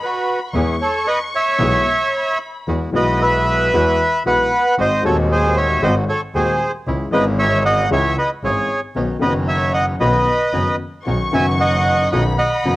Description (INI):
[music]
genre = tango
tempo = 114 BPM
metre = 4/4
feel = rubato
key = E major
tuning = A4 = 435 Hz
[part]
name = bandoneon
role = melody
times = 0.0-12.8 s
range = F#4 to G#5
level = -17 LUFS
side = right 1 dB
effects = cassette tape
[part]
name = warm studio violin section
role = second line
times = 0.0-2.7, 11.1-12.8 s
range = B5 to C#6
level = -26 LUFS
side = left 3 dB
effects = cassette tape
[part]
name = warm upright piano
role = accompaniment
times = 0.5-12.8 s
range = D#1 to G#4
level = -22 LUFS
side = left 3 dB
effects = cassette tape
[part]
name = bandoneon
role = stabs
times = 0.5-12.8 s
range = G#3 to G#4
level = -29 LUFS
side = right 1 dB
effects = cassette tape
[part]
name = clear double bass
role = bass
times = 0.5-12.8 s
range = F#1 to E2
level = -21 LUFS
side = equal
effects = none
[sound]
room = moderate spring reverb, RT60 1.1 s, small room ambience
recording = home recording on cassette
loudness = -15 LUFS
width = side -17 dB against mid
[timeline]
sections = 0.0-2.7 A section; 2.7-12.8 B section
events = none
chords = 0.0 B5; 0.5 E; 2.7 Eadd9; 4.8 G#7; 6.9 C#m; 9.0 Badd9